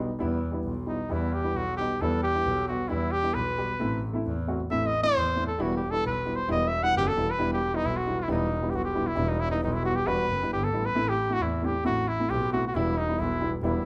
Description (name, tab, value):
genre	klezmer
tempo	134 BPM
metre	2/4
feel	straight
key	E harmonic minor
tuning	A4 = 439 Hz
part	dark upright piano	accompaniment	0.0-13.8 s	G3 to G4	-33 LUFS	equal	none
part	clear double bass	bass	0.2-13.8 s	E1 to E2	-33 LUFS	equal	none
part	warm cornet	melody	0.9-13.9 s	D#4 to F#5	-30 LUFS	equal	none
room	moderate studio reverb, RT60 0.7 s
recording	band playing live in one room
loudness	-27 LUFS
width	mono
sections	0.2-7.4 A section; 7.4-13.9 B section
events	cornet solo 0.2-7.4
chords	0.2 Em; 3.8 Am; 5.6 Em; 11.0 Am; 12.7 Em